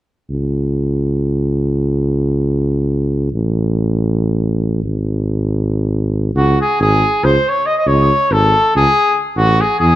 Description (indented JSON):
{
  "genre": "balkan folk",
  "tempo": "free time",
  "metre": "none",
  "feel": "none",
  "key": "unclear",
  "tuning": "A4 = 441 Hz",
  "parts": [
    { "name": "dark tuba", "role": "bass", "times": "0.3-10.0 s", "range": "G#1 to E2", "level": "-15 LUFS", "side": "equal", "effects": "none" },
    { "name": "clear trumpet", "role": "melody", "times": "6.4-10.0 s", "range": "F#4 to D#5", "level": "-13 LUFS", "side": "equal", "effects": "none" }
  ],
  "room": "light reverb",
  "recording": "dark, warm production",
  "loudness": "-13 LUFS",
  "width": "side -14 dB against mid",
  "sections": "0.3-6.4 A section; 6.4-10.0 B section",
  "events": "none",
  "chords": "0.3 N.C.; 6.4 C#5; 9.3 A5"
}